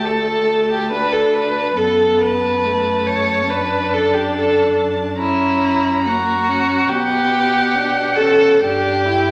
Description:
classical, slow romantic movement for string quartet; 70 BPM; 4/4; rubato; D major; A4 = 439 Hz
rich violin; melody; 0.0-9.3 s; F#5 to A#5; -26 LUFS; equal
warm violin; second line; 0.0-9.3 s; E4 to C#5; -18 LUFS; equal
warm viola; accompaniment; 0.0-9.3 s; A3 to E4; -24 LUFS; equal
rich cello; bass; 0.0-9.3 s; D2 to B2; -30 LUFS; equal
wet recital hall reverb, RT60 1.5 s; -17 LUFS; mono
0.0-9.3 A section
0.0 D5; 1.8 D/F#; 5.2 F#7; 6.9 B5; 8.6 G5

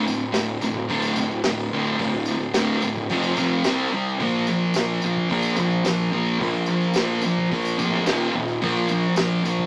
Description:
garage rock duo or trio; 109 BPM; 4/4; straight; A4 = 440 Hz
thick fuzz guitar; riff; 0.0-9.7 s; D2 to C4; -21 LUFS; equal; distortion
fuzz fingered electric bass; bass; 0.0-9.7 s; D1 to C2; -27 LUFS; equal; overdrive, tube saturation
tambourine; percussion; 0.1-9.6 s; -36 LUFS; equal
vintage drum kit; drums; 0.3-9.7 s; hi-hat, kick drum, snare drum; -28 LUFS; equal
moderate studio ambience, RT60 0.5 s; rough rehearsal-room recording, tube saturation, small speaker sound; -20 LUFS; side -38 dB against mid
0.0-9.7 A section
0.0 D5; 3.1 F5; 3.7 C5; 4.2 Bb5; 8.1 Eb5; 8.6 Bb5

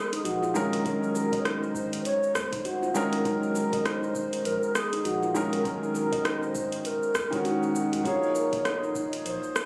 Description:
organic downtempo; 100 BPM; 4/4; swing 59% on 16ths; A4 = 439 Hz
breathy hollow low Native American-style wooden flute; melody; 0.0-9.7 s; Eb4 to Db5; -33 LUFS; equal; tape echo
felt-muted upright piano; accompaniment; 0.0-9.7 s; Eb3 to Bb4; -33 LUFS; equal; sidechain pumping, tape echo
handpan; arpeggios; 0.1-9.1 s; Eb4 to Eb5; -34 LUFS; equal; tape echo
afro-pop drum kit; drums; 0.1-9.7 s; hi-hat, rim click, shaker; -36 LUFS; equal
warm sub bass; bass; 0.3-9.4 s; Eb1 to Bb1; -47 LUFS; equal
udu; percussion; 0.5-8.0 s; -61 LUFS; equal
electronic kick drum; drums; 0.8-9.1 s; -42 LUFS; equal
moderate echo chamber reverb, RT60 2.3 s; recorded on a phone in the room, compression; -28 LUFS; mono
0.0-9.7 A section
0.0 Gbadd9/Eb

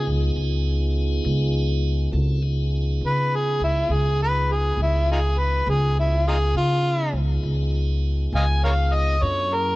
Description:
blues; 68 BPM (dotted quarters); 12/8; straight; Db mixolydian; A4 = 441 Hz
overdriven harmonica; melody; 0.0-9.8 s; Eb4 to Ab5; -23 LUFS; equal
tonewheel organ; sustained chords; 0.0-9.8 s; Bb3 to A4; -31 LUFS; right 1 dB; slow rotary speaker
upright bass; bass; 0.0-9.8 s; Db2 to Db3; -21 LUFS; equal
light reverb; dark, warm production; -20 LUFS; side -19 dB against mid
0.0-2.1 A section; 2.1-9.8 B section
harmonica solo 2.1-9.8
0.0 Db7; 9.2 Gb7

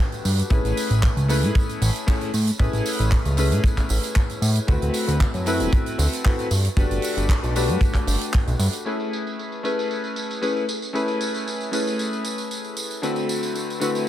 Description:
nu-disco, nu disco; 115 BPM; 4/4; straight; A major; A4 = 436 Hz
clear electric grand piano; accompaniment; 0.0-14.1 s; D3 to B4; -25 LUFS; left 2 dB; lush chorus, sidechain pumping, diffuse ambient delay
tight funk drum kit; drums; 0.1-14.1 s; handclaps, hi-hat, tambourine; -30 LUFS; right 2 dB; low-pass filter on hats, low-pass filter on perc, low-pass filter on snare, low-pass filter on room
fat analog bass; bass; 0.2-8.7 s; D1 to A2; -21 LUFS; equal
kick drum; drums; 0.5-8.4 s; -20 LUFS; equal
light reverb, small room ambience; -20 LUFS; side -12 dB against mid
0.0-8.9 A section; 8.9-14.1 B section
0.0 Gmaj9; 0.5 Amaj9; 4.7 D13; 6.5 Gmaj9; 8.9 Amaj9; 13.0 D13

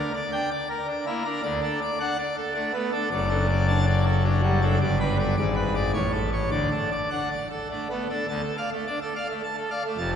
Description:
classical, organ toccata; 106 BPM; 3/4; straight; D major; A4 = 441 Hz
pipe organ, full organ; solo; 0.0-10.2 s; F1 to A5; -23 LUFS; equal
wet cathedral reverb, RT60 4.2 s; recorded in a church or concert hall; -23 LUFS; side -8 dB against mid
0.0-8.3 A section; 8.3-10.2 B section
0.0 Gm/D; 1.4 D; 3.1 D/F#; 4.8 G; 5.4 G#dim; 5.9 A; 6.5 D; 8.3 Dm

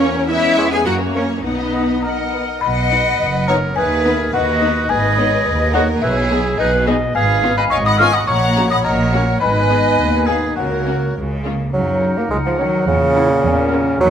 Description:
cinematic, playful, whimsical film cue; 106 BPM; 2/4; straight; B major, F# major from 7.2 s; A4 = 440 Hz
warm studio violin section; melody; 0.0-13.9 s; E#4 to F#5; -29 LUFS; left 4 dB
clear oboe; second line; 0.0-14.1 s; D#4 to E#5; -24 LUFS; right 2 dB
large flute ensemble; second line; 0.0-14.1 s; B4 to C#6; -22 LUFS; left 2 dB
mellow clarinet; second line; 0.0-14.1 s; B3 to E#5; -23 LUFS; left 1 dB
warm studio violin section; second line; 0.0-13.9 s; C#4 to G#5; -23 LUFS; left 1 dB
mellow bassoon; accompaniment; 0.0-2.4, 11.7-14.1 s; C#3 to B3; -18 LUFS; right 2 dB
rich studio viola section; accompaniment; 0.0-13.9 s; G#3 to D#4; -26 LUFS; right 1 dB
mellow French horn section; sustained chords; 0.0-14.1 s; A#2 to G#4; -26 LUFS; left 4 dB
rich studio cello section; bass; 0.0-14.1 s; D#2 to G#4; -23 LUFS; right 1 dB
rich studio double bass section; bass; 0.0-14.1 s; F#1 to F#2; -22 LUFS; right 2 dB
folk marimba with medium mallets; melody; 2.0-11.1 s; D#5 to E#6; -21 LUFS; left 5 dB
moderate scoring stage reverb, RT60 1.9 s; -14 LUFS; side -8 dB against mid
0.0-2.6 A section; 2.6-11.7 B section; 11.7-14.1 C section
0.3 C#m/E; 0.9 F#; 1.4 B; 3.8 B/D#; 4.9 G#m; 6.0 G#m/B; 7.2 C#7/G#; 8.3 F#/A#; 9.4 G#m; 10.6 F#/C#; 11.2 C#5; 11.7 F#; 12.9 F#7/E

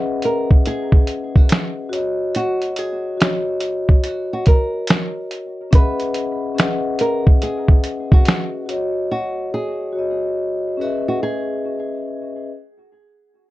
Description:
lo-fi hip hop; 71 BPM; 4/4; swing 65% on 16ths; C# dorian; A4 = 440 Hz
vibraphone with soft mallets; accompaniment; 0.0-12.5 s; C#4 to F#5; -22 LUFS; left 2 dB; cassette tape, low-pass filter
lo-fi sampler-style drum kit; drums; 0.2-8.9 s; finger snaps, hi-hat, kick drum, snare drum; -13 LUFS; equal; vintage 12-bit sampler grit
nylon-string guitar; melody; 0.3-12.5 s; F#4 to B4; -25 LUFS; right 1 dB; low-pass filter, analog delay
little or no reverb; dark, warm production; -16 LUFS; side -16 dB against mid
0.0-12.5 A section
0.0 C#m11; 1.9 D#m7; 5.7 C#m11; 8.7 D#m7; 10.8 C#m9

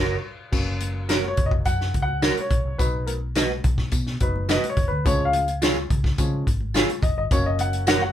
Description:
uptempo 1960s-style soul; 106 BPM; 4/4; straight; F# major; A4 = 442 Hz
electric guitar through a small old amp; stabs; 0.0-8.0 s; E#4 to D#5; -25 LUFS; right 3 dB
vintage muted fingered electric bass; bass; 0.0-8.1 s; E#1 to C#3; -27 LUFS; equal
warm upright piano; accompaniment; 0.5-8.1 s; E#3 to F#5; -26 LUFS; left 1 dB
vintage drum kit; drums; 0.5-8.0 s; crash cymbal, hi-hat, kick drum, snare drum; -23 LUFS; equal
tambourine; percussion; 0.5-8.0 s; -36 LUFS; left 5 dB
congas; percussion; 0.8-8.1 s; -39 LUFS; right 2 dB
light reverb; band playing live in one room; -20 LUFS; side -11 dB against mid
0.5-8.1 A section
band accent 0.0-0.5; upright piano solo 0.5-8.1
0.0 F#; 2.8 B; 5.1 C#; 7.3 F#

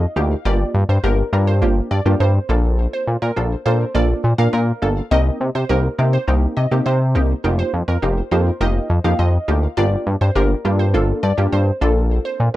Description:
dance-pop; 103 BPM; 4/4; straight; A4 = 441 Hz
glassy wavetable pluck; melody; 0.0-12.6 s; Bb4 to F5; -26 LUFS; right 1 dB; chorus, ping-pong delay
punchy chord stab; accompaniment; 0.0-12.5 s; Bb3 to Bb4; -22 LUFS; right 1 dB; chorus
chorused synth bass; bass; 0.0-12.5 s; F1 to C3; -16 LUFS; equal
little or no reverb; rough home demo mix; -15 LUFS; side -15 dB against mid
0.0-12.6 A section
0.5 Gm7; 2.5 Bbmaj7; 5.1 Cm7; 7.4 F9sus4; 9.8 Gm7

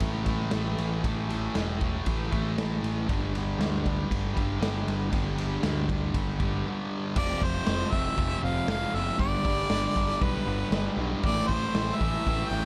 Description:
garage rock duo or trio; 118 BPM; 4/4; straight; A4 = 440 Hz
fuzz guitar; riff; 0.0-12.7 s; F2 to A3; -33 LUFS; equal; distortion
picked electric bass; bass; 0.0-12.7 s; E1 to D2; -34 LUFS; equal
raw garage drum kit; drums; 0.0-12.4 s; crash cymbal, kick drum, ride cymbal, snare drum; -33 LUFS; equal
clear harmonica; melody; 7.2-12.7 s; B4 to G5; -33 LUFS; equal; overdrive
light reverb; -28 LUFS; mono
0.0-7.2 A section; 7.2-12.7 B section
break 6.7-7.2
0.0 A5; 3.1 G5; 7.2 F5; 9.2 G; 11.2 Am

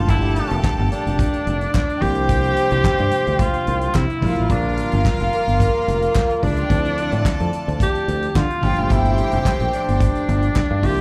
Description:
disco; 109 BPM; 4/4; straight; G dorian; A4 = 440 Hz
breathy tenor saxophone; melody; 0.0-11.0 s; Bb3 to G4; -25 LUFS; equal; analog delay
clear chamber string section; second line; 0.0-11.0 s; D4 to A5; -29 LUFS; equal; slapback echo
tine electric piano; accompaniment; 0.0-11.0 s; Bb2 to F4; -29 LUFS; equal
warm horn section; stabs; 0.0-11.0 s; D3 to D5; -30 LUFS; equal; slapback echo
fingered electric bass; bass; 0.0-11.0 s; F1 to D3; -24 LUFS; equal
damped 70s drum kit; drums; 0.1-11.0 s; handclaps, hi-hat, kick drum, snare drum; -22 LUFS; equal
group handclap; percussion; 0.6-10.7 s; -38 LUFS; equal
small room reverb; live gig heard through the venue's PA, club ambience; -19 LUFS; mono
0.0-11.0 A section
0.0 Gm9; 2.0 C9sus4; 4.2 Bb6; 6.7 Dm9; 8.6 Gm9

